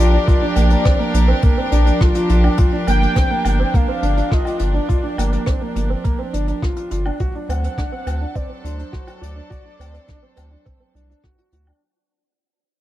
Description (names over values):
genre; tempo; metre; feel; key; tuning
piano and strings electronica; 104 BPM; 4/4; straight; unclear; A4 = 441 Hz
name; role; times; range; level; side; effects
warm velvety synth lead; melody; 0.0-11.2 s; C5 to G5; -27 LUFS; left 1 dB; chorus
rich chamber string section; sustained chords; 0.0-11.8 s; F3 to C5; -25 LUFS; right 1 dB; sidechain pumping
felt-muted upright piano; riff; 0.0-11.8 s; Bb3 to F#4; -23 LUFS; right 1 dB; digital delay
round analog bass; bass; 0.0-11.7 s; G1 to D2; -17 LUFS; equal; sidechain pumping
electronic kick drum; drums; 0.3-11.4 s; none; -17 LUFS; equal; none
jazz brush drum kit; drums; 0.3-11.8 s; hi-hat, rim click, woodblock; -31 LUFS; left 2 dB; none
room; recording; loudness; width
small room ambience; dark, warm production; -15 LUFS; side -14 dB against mid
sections
0.0-11.8 A section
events
drop 0.0-11.8; fade-out 2.6-11.8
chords
0.0 Bb6; 2.6 Gm7; 7.2 D7